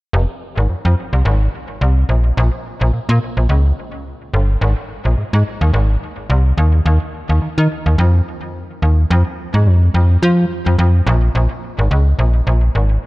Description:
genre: funk.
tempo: 107 BPM.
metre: 4/4.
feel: swing 56% on 16ths.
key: Bb dorian.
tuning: A4 = 440 Hz.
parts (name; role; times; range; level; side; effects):
slap-like FM bass; solo; 0.1-13.0 s; F1 to F3; -13 LUFS; equal; none.
room: light reverb.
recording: dark, warm production.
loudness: -13 LUFS.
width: side -20 dB against mid.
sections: 0.1-9.1 A section; 9.1-13.1 B section.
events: none.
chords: none.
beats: | 0.13 0.69 1.25 1.81 | 2.38 2.94 3.50 4.06 | 4.62 5.18 5.74 6.30 | 6.86 7.42 7.98 8.54 | 9.10 9.66 10.22 10.79 | 11.35 11.91 12.47.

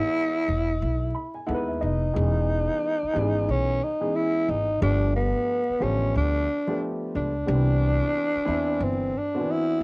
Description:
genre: hip hop, jazz-hop.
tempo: 90 BPM.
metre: 4/4.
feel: swing 62% on 16ths.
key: unclear.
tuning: A4 = 436 Hz.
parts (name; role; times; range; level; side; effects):
growling tenor saxophone; melody; 0.0-9.8 s; B3 to E4; -25 LUFS; equal; cassette tape.
dark upright piano; accompaniment; 0.0-9.8 s; D3 to B5; -30 LUFS; equal; cassette tape.
upright bass; bass; 0.5-9.8 s; E1 to E2; -25 LUFS; equal; none.
room: light reverb.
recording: home recording on cassette, vinyl crackle.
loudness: -22 LUFS.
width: side -28 dB against mid.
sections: 0.0-2.1 A section; 2.1-9.8 B section.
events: upright piano fill 0.8-2.1.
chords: 0.0 Emaj7; 2.1 E6; 4.8 G9; 7.5 Cmaj9.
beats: 0.15 0.81 1.48 | 2.15 2.81 3.48 4.15 | 4.81 5.48 6.15 6.81 | 7.48 8.15 8.81 9.48.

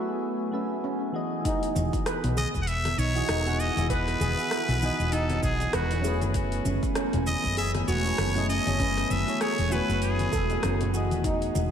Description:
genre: sunset chillout.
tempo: 98 BPM.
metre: 4/4.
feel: swing 58% on 16ths.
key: unclear.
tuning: A4 = 440 Hz.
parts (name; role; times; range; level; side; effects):
soft electric-piano-like synth keys; accompaniment; 0.0-11.7 s; E3 to G#5; -32 LUFS; moving between left 2 dB and right 4 dB; chorus, tremolo, auto-pan, ping-pong delay, slapback echo.
airy breathy pad; sustained chords; 0.0-11.7 s; E3 to G#5; -34 LUFS; equal; chorus.
steel pan; arpeggios; 0.0-11.4 s; C#4 to B4; -33 LUFS; right 2 dB; ping-pong delay, slapback echo.
electronic kick drum; drums; 1.4-11.4 s; none; -31 LUFS; equal; overdrive.
deep house drum kit; drums; 1.5-11.7 s; hi-hat, rim click, shaker; -35 LUFS; equal; overdrive, slapback echo.
woody fretless electric bass; bass; 1.8-11.7 s; E1 to B1; -28 LUFS; equal; none.
congas and bongos; percussion; 1.8-11.7 s; none; -37 LUFS; left 4 dB; none.
trumpet with straight mute; melody; 2.4-10.9 s; F#4 to F#5; -30 LUFS; equal; ping-pong delay, slapback echo.
room: moderate lush hall reverb, RT60 1.6 s.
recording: big arena sound.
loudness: -24 LUFS.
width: side -8 dB against mid.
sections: 0.0-1.4 A section; 1.4-11.7 B section.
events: filter sweep on steel pan 0.0-1.4.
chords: 0.0 F#m11.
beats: 0.22 0.83 | 1.45 2.06 2.67 3.28 | 3.90 4.51 5.12 5.73 | 6.34 6.96 7.57 8.18 | 8.79 9.41 10.02 10.63 | 11.24.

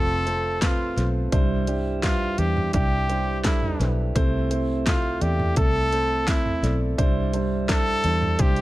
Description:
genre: piano-driven pop.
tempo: 85 BPM.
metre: 4/4.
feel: straight.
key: C major.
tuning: A4 = 441 Hz.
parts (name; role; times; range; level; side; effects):
warm trumpet; melody; 0.0-8.6 s; E4 to A4; -26 LUFS; equal; none.
dark baby grand piano; accompaniment; 0.0-8.6 s; G2 to E5; -27 LUFS; right 2 dB; none.
vintage muted fingered electric bass; bass; 0.0-8.6 s; F1 to E2; -26 LUFS; equal; none.
pop drum kit; drums; 0.3-8.6 s; handclaps, hi-hat, kick drum, snare drum, toms; -24 LUFS; equal; none.
room: light reverb.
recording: none.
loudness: -20 LUFS.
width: side -17 dB against mid.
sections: 0.0-8.6 A section.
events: none.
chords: 0.0 F; 1.3 Cadd9; 4.2 Am/C; 7.0 Cadd9.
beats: 0.62 | 1.32 2.03 2.74 3.45 | 4.15 4.86 5.57 6.27 | 6.98 7.69 8.39.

